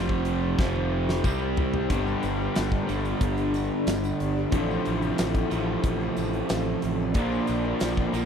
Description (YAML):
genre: classic rock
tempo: 91 BPM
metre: 4/4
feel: straight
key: unclear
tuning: A4 = 441 Hz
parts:
  - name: string machine, cellos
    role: sustained chords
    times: 0.0-8.3 s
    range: C4 to F5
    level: -33 LUFS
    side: left 1 dB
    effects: phaser, ensemble chorus
  - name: distorted electric guitar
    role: riff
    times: 0.0-8.3 s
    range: F2 to C4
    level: -29 LUFS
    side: right 11 dB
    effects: distortion
  - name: raw garage guitar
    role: riff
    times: 0.0-8.3 s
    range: F2 to G4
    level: -31 LUFS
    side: left 13 dB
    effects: overdrive, spring reverb
  - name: fuzz fingered electric bass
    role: bass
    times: 0.0-8.3 s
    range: F1 to C2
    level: -30 LUFS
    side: equal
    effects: overdrive
  - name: big rock drum kit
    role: drums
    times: 0.1-8.3 s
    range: hi-hat, kick drum, snare drum, toms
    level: -29 LUFS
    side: equal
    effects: none
  - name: tambourine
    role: percussion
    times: 1.2-8.3 s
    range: none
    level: -48 LUFS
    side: right 13 dB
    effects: none
  - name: picked twelve-string acoustic guitar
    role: accompaniment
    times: 1.9-8.3 s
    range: G2 to Bb4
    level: -36 LUFS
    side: left 14 dB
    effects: lush chorus
room: little or no reverb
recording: dry, close 1970s-style studio recording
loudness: -23 LUFS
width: side -7 dB against mid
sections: 0.0-1.9 A section; 1.9-8.3 B section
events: drum fill 0.6-1.9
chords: 0.0 F5; 1.2 C5; 1.9 G; 4.5 F/A; 7.2 Bbadd9